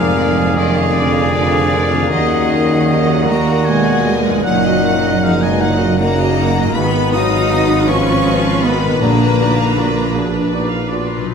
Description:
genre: classical, slow romantic movement for symphony orchestra.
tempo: 52 BPM (dotted quarters).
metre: 6/8.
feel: uneven beats, rubato.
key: Eb minor.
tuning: A4 = 439 Hz.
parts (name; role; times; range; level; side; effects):
rich chamber violin section; melody; 0.0-11.3 s; Cb5 to Gb5; -24 LUFS; left 5 dB; none.
bright clarinet; second line; 0.0-11.3 s; D4 to Ab4; -23 LUFS; left 1 dB; none.
clear chamber violin section; second line; 0.0-10.1 s; D5 to Eb6; -26 LUFS; left 6 dB; none.
mellow hollow concert flute; second line; 0.0-11.0 s; D5 to Ab5; -27 LUFS; left 3 dB; none.
warm oboe; second line; 0.0-10.2 s; D5 to Eb6; -25 LUFS; equal; none.
rich chamber viola section; accompaniment; 0.0-11.3 s; D4 to F5; -25 LUFS; right 3 dB; none.
warm bassoon; accompaniment; 0.0-11.1 s; Bb2 to Cb3; -24 LUFS; right 1 dB; none.
warm French horn section; sustained chords; 0.0-10.2 s; F2 to Gb3; -22 LUFS; left 6 dB; none.
concert harp; arpeggios; 0.0-11.3 s; Gb2 to Cb5; -24 LUFS; left 8 dB; none.
dark tuba; bass; 0.0-11.2 s; F1 to Eb2; -21 LUFS; right 4 dB; none.
rich chamber cello section; bass; 0.0-10.1 s; D3 to Eb4; -19 LUFS; right 4 dB; none.
warm studio double bass section; bass; 0.0-11.3 s; Gb1 to F2; -21 LUFS; right 3 dB; none.
timpani; percussion; 9.0-10.1 s; Bb2; -25 LUFS; left 4 dB; none.
room: moderate scoring stage reverb, RT60 2.0 s.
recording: none.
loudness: -12 LUFS.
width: side -6 dB against mid.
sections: 0.0-11.3 A section.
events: none.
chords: 0.0 Bb7/F; 2.1 Ebm; 4.4 Ebm/Gb; 6.8 Fm7b5/Ab; 9.0 Bb7b9.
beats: 0.95 | 2.12 3.29 | 4.45 5.60 | 6.75 7.87 | 9.01 10.15 | 11.34.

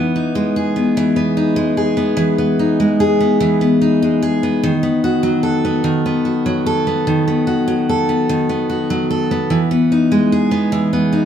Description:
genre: pop.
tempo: 49 BPM (dotted quarters).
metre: 6/8.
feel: straight.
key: E major.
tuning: A4 = 440 Hz.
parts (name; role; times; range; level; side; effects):
picked steel-string acoustic guitar; solo; 0.0-11.2 s; D#3 to A4; -14 LUFS; equal; none.
room: moderate stone room reverb, RT60 1.0 s.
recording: band playing live in one room.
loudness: -14 LUFS.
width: side -9 dB against mid.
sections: 0.0-11.2 A section.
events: none.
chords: 0.0 Emaj7; 4.6 B7/D#; 9.5 Emaj7.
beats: 0.97 | 2.19 3.41 | 4.63 5.84 | 7.06 8.28 | 9.50 10.72.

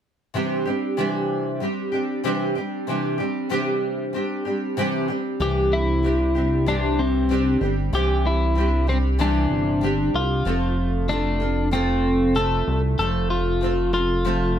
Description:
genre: pop.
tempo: 95 BPM.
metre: 4/4.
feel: swing 55% on 16ths.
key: C major.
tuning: A4 = 442 Hz.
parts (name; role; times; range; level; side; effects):
nylon-string guitar; accompaniment; 0.3-14.6 s; C3 to A4; -24 LUFS; right 1 dB; double-tracked left and right.
twelve-string electric guitar; melody; 5.4-14.6 s; C4 to A4; -23 LUFS; left 2 dB; none.
chorused synth bass; bass; 5.4-14.6 s; F1 to C2; -23 LUFS; equal; none.
room: moderate studio reverb, RT60 0.8 s.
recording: none.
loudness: -20 LUFS.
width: side -9 dB against mid.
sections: 0.3-5.4 A section; 5.4-14.6 B section.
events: none.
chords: 0.3 Cadd9; 10.5 F.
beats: | 0.34 0.98 1.61 2.24 | 2.88 3.51 4.14 4.77 | 5.41 6.04 6.67 7.30 | 7.93 8.56 9.19 9.83 | 10.46 11.09 11.72 12.35 | 12.98 13.62 14.25.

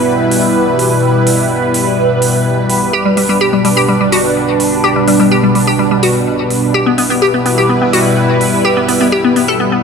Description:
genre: progressive house.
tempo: 126 BPM.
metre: 4/4.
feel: straight.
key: unclear.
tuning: A4 = 440 Hz.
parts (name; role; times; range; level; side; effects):
lush unison pad; sustained chords; 0.0-9.8 s; B2 to B4; -12 LUFS; equal; chorus, phaser.
electronic hi-hat; drums; 0.3-9.5 s; none; -20 LUFS; right 3 dB; none.
glassy wavetable pluck; arpeggios; 2.9-9.8 s; G3 to A4; -12 LUFS; left 1 dB; chorus, phaser, vintage 12-bit sampler grit, ping-pong delay.
swell; sound effects; 9.8 s; none; -30 LUFS; left 6 dB; none.
room: moderate lush hall reverb, RT60 2.4 s.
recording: none.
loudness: -10 LUFS.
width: side -5 dB against mid.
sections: 0.0-9.8 A section.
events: none.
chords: 0.0 Em; 2.9 G; 6.7 Em.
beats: 0.08 0.55 | 1.03 1.50 1.98 2.46 | 2.93 3.41 3.89 4.36 | 4.84 5.31 5.79 6.27 | 6.74 7.22 7.70 8.17 | 8.65 9.12 9.60.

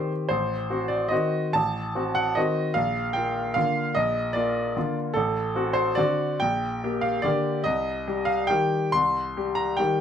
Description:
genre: classical, piano waltz.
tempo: 130-158 BPM.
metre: 3/4.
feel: rubato.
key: Bb major.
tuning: A4 = 440 Hz.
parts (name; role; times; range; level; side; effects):
bright baby grand piano; solo; 0.0-10.0 s; A1 to C6; -23 LUFS; equal; none.
room: moderate studio reverb, RT60 0.5 s.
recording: none.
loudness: -23 LUFS.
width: side -8 dB against mid.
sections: 0.0-10.0 A section.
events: none.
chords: 0.3 Adim7; 2.8 Bb; 5.2 D7/A; 6.4 Gm/Bb; 7.7 Cm.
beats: | 0.32 0.71 1.12 | 1.55 1.96 2.37 | 2.76 3.15 3.56 | 3.96 4.35 4.76 | 5.16 5.56 5.98 | 6.42 6.83 7.25 | 7.67 8.07 8.50 | 8.95 9.37 9.79.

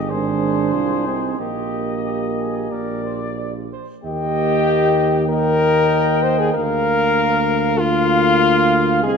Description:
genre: classical, brass quintet.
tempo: 90-98 BPM.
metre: 4/4.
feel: rubato.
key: Eb major.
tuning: A4 = 440 Hz.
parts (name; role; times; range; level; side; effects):
mellow cornet; melody; 0.0-9.2 s; C5 to Ab5; -24 LUFS; left 7 dB; none.
warm flugelhorn; second line; 0.0-9.2 s; G4 to F5; -26 LUFS; right 7 dB; none.
clear French horn; accompaniment; 0.0-9.2 s; Eb4 to C5; -20 LUFS; left 4 dB; none.
mellow tuba; bass; 0.0-9.2 s; G1 to Eb2; -22 LUFS; right 5 dB; none.
warm euphonium; accompaniment; 0.1-9.2 s; Bb3 to D4; -26 LUFS; right 6 dB; none.
room: moderate scoring stage reverb, RT60 1.9 s.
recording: none.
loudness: -16 LUFS.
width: side -6 dB against mid.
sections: 0.0-4.0 A section; 4.0-9.2 B section.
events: none.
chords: 0.1 Ab; 1.4 Eb/Bb; 4.0 Eb; 6.6 Bb/D.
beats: 0.11 0.75 | 1.40 2.06 2.72 3.39 | 4.04 4.68 5.30 5.93 | 6.55 7.17 7.79 8.41 | 9.03.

